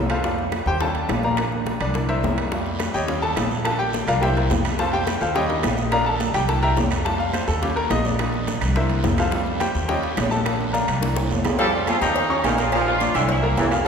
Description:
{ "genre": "latin, salsa", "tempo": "212 BPM", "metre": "4/4", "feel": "straight", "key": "F major", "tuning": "A4 = 440 Hz", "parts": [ { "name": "bright upright piano", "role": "accompaniment", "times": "0.0-13.9 s", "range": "F3 to G6", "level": "-23 LUFS", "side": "left 1 dB", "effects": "none" }, { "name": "upright bass", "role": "bass", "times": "0.0-13.9 s", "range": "Bb1 to F2", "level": "-25 LUFS", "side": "equal", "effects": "none" }, { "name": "bongos and cowbell", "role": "percussion", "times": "0.1-13.7 s", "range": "none", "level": "-32 LUFS", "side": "left 4 dB", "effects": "none" }, { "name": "claves", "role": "percussion", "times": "0.1-13.9 s", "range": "none", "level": "-38 LUFS", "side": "right 5 dB", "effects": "none" }, { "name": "congas", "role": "percussion", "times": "0.1-13.9 s", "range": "none", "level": "-30 LUFS", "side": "left 2 dB", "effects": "none" }, { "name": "timbales and agogo bells", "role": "percussion", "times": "0.1-13.9 s", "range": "none", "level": "-28 LUFS", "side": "right 3 dB", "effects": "none" }, { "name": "guiro", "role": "percussion", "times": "2.5-13.9 s", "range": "none", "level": "-37 LUFS", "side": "right 5 dB", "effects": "none" }, { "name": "clear horn section", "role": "melody", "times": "11.6-13.9 s", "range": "Bb3 to A4", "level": "-24 LUFS", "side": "right 1 dB", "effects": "none" }, { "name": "clear saxophone section", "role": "second line", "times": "11.6-13.9 s", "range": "D3 to G3", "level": "-25 LUFS", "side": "right 1 dB", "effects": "none" } ], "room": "wet church reverb, RT60 3.5 s", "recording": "recorded in a church or concert hall", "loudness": "-19 LUFS", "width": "side -6 dB against mid", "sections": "0.0-11.6 A section; 11.6-13.9 B section", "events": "upright piano solo 0.0-11.6; drum fill 11.0-11.6", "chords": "0.2 Fadd9; 0.8 Eb7; 1.4 Bb; 1.9 C7; 2.5 Fadd9; 3.1 Eb7; 3.7 Bb; 4.2 C7; 4.8 Fadd9; 5.4 Eb7; 5.9 Bb; 6.5 C7; 7.1 Fadd9; 7.6 Eb7; 8.2 Bb; 8.8 C7; 9.3 Fadd9; 9.9 Eb7; 10.5 Bb; 11.0 C7; 11.6 Fadd9; 12.2 Eb7; 12.7 Bb; 13.3 C7", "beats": "| 0.24 0.52 0.81 1.09 | 1.38 1.66 1.95 2.23 | 2.51 2.80 3.08 3.37 | 3.65 3.94 4.22 4.50 | 4.79 5.07 5.36 5.64 | 5.92 6.21 6.49 6.77 | 7.06 7.34 7.62 7.91 | 8.19 8.47 8.76 9.04 | 9.32 9.61 9.89 10.18 | 10.46 10.74 11.03 11.31 | 11.59 11.88 12.16 12.44 | 12.72 13.01 13.29 13.57 | 13.86" }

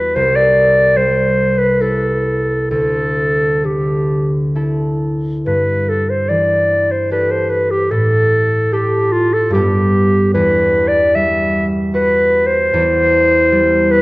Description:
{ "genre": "classical, impressionist duo for clarinet and harp", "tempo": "63-76 BPM", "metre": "3/4", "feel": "rubato", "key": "G major", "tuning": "A4 = 439 Hz", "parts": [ { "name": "warm clarinet", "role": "melody", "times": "0.0-14.0 s", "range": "F4 to E5", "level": "-14 LUFS", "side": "equal", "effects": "none" }, { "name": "concert harp", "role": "accompaniment", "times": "0.0-14.0 s", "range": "C2 to B4", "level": "-17 LUFS", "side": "equal", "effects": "none" } ], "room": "moderate recital hall reverb, RT60 1.7 s", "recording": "worn, warbling old tape, cassette tape, warbly pitch drift", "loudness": "-12 LUFS", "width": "side -21 dB against mid", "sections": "0.0-5.5 A section; 5.5-14.0 A section", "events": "none", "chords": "0.2 Cmaj7; 2.7 Dsus24; 5.5 Gsus2; 7.9 A5; 9.5 G; 10.3 Emadd9; 12.7 C/E", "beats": "| 0.15 0.96 1.80 | 2.71 3.64 4.55 | 5.46 6.29 7.11 | 7.91 8.72 9.54 | 10.34 11.14 11.94 | 12.73 13.51" }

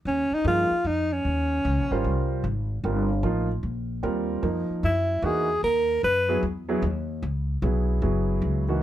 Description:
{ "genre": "modal jazz", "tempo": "151 BPM", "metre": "3/4", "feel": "swing 65% on 8ths", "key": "unclear", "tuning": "A4 = 440 Hz", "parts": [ { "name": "clear alto saxophone", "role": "melody", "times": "0.1-2.3, 4.8-6.4 s", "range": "Db4 to Cb5", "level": "-23 LUFS", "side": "equal", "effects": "none" }, { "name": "upright bass", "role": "bass", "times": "0.1-8.8 s", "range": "Gb1 to G2", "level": "-27 LUFS", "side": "left 1 dB", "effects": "none" }, { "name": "warm concert grand piano", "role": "accompaniment", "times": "0.5-8.8 s", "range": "Fb3 to C5", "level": "-27 LUFS", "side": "right 2 dB", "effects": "none" } ], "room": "light reverb", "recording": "none", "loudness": "-23 LUFS", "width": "side -12 dB against mid", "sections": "0.1-8.8 A section", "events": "none", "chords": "0.1 Eb13sus4; 4.8 Gb13sus4", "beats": "| 0.06 0.46 0.86 | 1.25 1.65 2.05 | 2.45 2.85 3.24 | 3.64 4.04 4.44 | 4.84 5.24 5.63 | 6.03 6.43 6.83 | 7.23 7.62 8.02 | 8.42" }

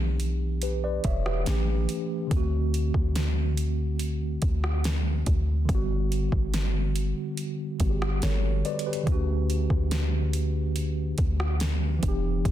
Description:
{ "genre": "contemporary R&B", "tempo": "71 BPM", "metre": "4/4", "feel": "straight", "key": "D major", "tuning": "A4 = 445 Hz", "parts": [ { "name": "mellow tine electric piano", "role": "accompaniment", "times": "0.0-12.5 s", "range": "D3 to E5", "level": "-30 LUFS", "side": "right 1 dB", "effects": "medium stereo tremolo" }, { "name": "warm 808-style bass", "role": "bass", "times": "0.0-12.5 s", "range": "E1 to D2", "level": "-26 LUFS", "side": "equal", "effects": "none" }, { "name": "smooth R&B drum kit", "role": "drums", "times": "0.2-12.5 s", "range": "hi-hat, kick drum, rim click, snare drum", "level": "-30 LUFS", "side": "equal", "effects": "none" } ], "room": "little or no reverb", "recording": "dense, heavily limited modern master", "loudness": "-24 LUFS", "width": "side -12 dB against mid", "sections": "0.0-12.5 A section", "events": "none", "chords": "0.0 Em7; 1.5 A7; 2.3 D7; 5.7 Gmaj7; 9.1 Dmaj7", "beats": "0.62 1.46 | 2.31 3.15 4.00 4.84 | 5.69 6.53 7.38 8.22 | 9.07 9.91 10.76 11.60 | 12.45" }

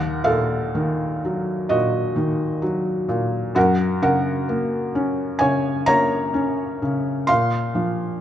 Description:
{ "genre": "classical, lyrical solo piano", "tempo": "64 BPM", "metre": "4/4", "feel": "rubato", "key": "unclear", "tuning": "A4 = 440 Hz", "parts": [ { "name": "felt-muted upright piano", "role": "solo", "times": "0.0-8.2 s", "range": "Eb2 to C6", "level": "-19 LUFS", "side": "equal", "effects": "none" } ], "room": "moderate concert hall reverb, RT60 1.8 s", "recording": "dark, warm production", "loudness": "-19 LUFS", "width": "side -10 dB against mid", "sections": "0.0-8.2 A section", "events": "none", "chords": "0.0 Ebm; 3.6 F#; 7.3 Bbsus2", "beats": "0.74 1.70 2.63 | 3.56 4.49 5.41 6.35 | 7.29" }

